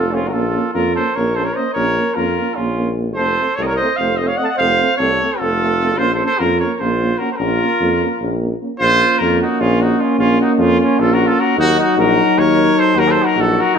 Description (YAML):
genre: balkan folk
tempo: 300 BPM (eighths)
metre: 7/8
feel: straight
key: Bb harmonic minor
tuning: A4 = 442 Hz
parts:
  - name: warm trumpet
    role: melody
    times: 0.0-13.8 s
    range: F4 to A5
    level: -18 LUFS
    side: equal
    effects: none
  - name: warm flugelhorn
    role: second line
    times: 0.0-13.8 s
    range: Db4 to F5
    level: -22 LUFS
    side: right 1 dB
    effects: none
  - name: warm euphonium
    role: accompaniment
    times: 0.0-13.8 s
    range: Gb3 to Bb3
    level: -22 LUFS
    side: right 6 dB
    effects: none
  - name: warm tuba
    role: bass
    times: 0.0-13.8 s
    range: F1 to F2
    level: -20 LUFS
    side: equal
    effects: none
  - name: mellow French horn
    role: accompaniment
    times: 0.1-13.8 s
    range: C4 to Eb4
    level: -22 LUFS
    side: left 6 dB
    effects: none
room: moderate large studio reverb, RT60 1.1 s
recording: band playing live in one room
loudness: -13 LUFS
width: side -7 dB against mid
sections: 0.0-8.8 A section; 8.8-13.8 B section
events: none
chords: 0.3 Bbm; 3.2 F; 6.0 Bbm; 11.6 Ebm